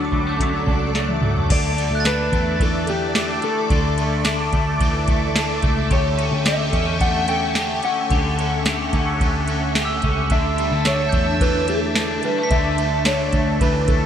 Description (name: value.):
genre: dream pop.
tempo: 109 BPM.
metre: 4/4.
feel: straight.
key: D major.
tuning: A4 = 440 Hz.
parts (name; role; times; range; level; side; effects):
mellow electric guitar; melody; 0.0-14.1 s; D4 to G5; -25 LUFS; left 1 dB; wide subtle chorus, ping-pong delay.
phased string machine; sustained chords; 0.0-14.1 s; D4 to E6; -26 LUFS; right 1 dB; ensemble chorus, phaser.
electric guitar at the edge of break-up; arpeggios; 0.0-14.1 s; D3 to G4; -24 LUFS; left 2 dB; analog chorus, ping-pong delay.
vintage muted picked electric bass; bass; 0.0-14.1 s; C#2 to E2; -24 LUFS; equal; none.
glockenspiel with hard plastic mallets; texture; 0.0-3.3, 9.9-13.7 s; D6 to B6; -31 LUFS; right 2 dB; ping-pong delay.
soft vintage rhythm box; drums; 0.1-14.0 s; crash cymbal, hi-hat, kick drum, ride cymbal, snare drum, tambourine, toms; -22 LUFS; right 1 dB; none.
room: moderate lush hall reverb, RT60 2.4 s.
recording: bright 1980s-style digital production.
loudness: -17 LUFS.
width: side -9 dB against mid.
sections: 0.0-1.5 A section; 1.5-14.1 B section.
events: drum fill 0.9-1.5.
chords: 0.0 D; 1.5 Dsus2; 5.9 A7/D; 10.3 Dsus2.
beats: 0.40 0.95 | 1.50 2.05 2.60 3.15 | 3.70 4.25 4.80 5.35 | 5.90 6.45 7.00 7.55 | 8.10 8.65 9.21 9.76 | 10.31 10.86 11.41 11.96 | 12.51 13.06 13.61.